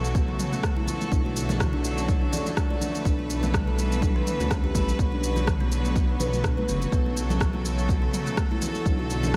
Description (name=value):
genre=afro house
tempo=124 BPM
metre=4/4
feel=swing 55% on 16ths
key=B minor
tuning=A4 = 439 Hz
part: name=clear studio string section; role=sustained chords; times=0.0-9.4 s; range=C#3 to B4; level=-34 LUFS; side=equal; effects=sidechain pumping
part: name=buzzing kalimba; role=arpeggios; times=0.0-9.3 s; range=C#3 to D5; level=-34 LUFS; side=equal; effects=sidechain pumping, diffuse ambient delay
part: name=dark detuned saw bass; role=bass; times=0.0-9.4 s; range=F#1 to D2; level=-31 LUFS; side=equal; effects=tube saturation, sidechain pumping
part: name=deep house drum kit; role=drums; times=0.0-9.4 s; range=rim click, shaker, toms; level=-35 LUFS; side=equal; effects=overdrive
part: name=electronic kick drum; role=drums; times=0.1-9.4 s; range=none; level=-29 LUFS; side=equal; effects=overdrive
part: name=congas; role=percussion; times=0.2-9.3 s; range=none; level=-37 LUFS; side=equal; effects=none
room=light reverb, studio ambience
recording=none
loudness=-25 LUFS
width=mono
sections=0.0-9.4 A section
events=none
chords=0.0 F#m/B; 1.1 D/B; 3.1 Asus2/B; 5.0 Bm; 6.9 F#m/B; 8.9 D/B